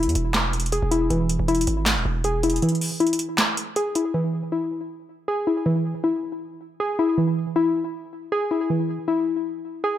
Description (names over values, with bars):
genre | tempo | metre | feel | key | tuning
hip hop, trap | 158 BPM | 4/4 | half-time | E major | A4 = 439 Hz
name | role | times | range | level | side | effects
warbly dusty pluck | arpeggios | 0.0-10.0 s | E3 to G#4 | -22 LUFS | left 1 dB | chorus, digital delay
distorted 808-style bass | bass | 0.0-2.6 s | D#1 to E2 | -24 LUFS | right 1 dB | distortion
booming analog drum machine | drums | 0.0-4.0 s | handclaps, hi-hat, snare drum | -24 LUFS | right 1 dB | overdrive
room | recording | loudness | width
light reverb | none | -21 LUFS | side -11 dB against mid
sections
0.0-4.1 A section; 4.1-10.0 B section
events
kick muted 2.6-4.1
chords
0.0 E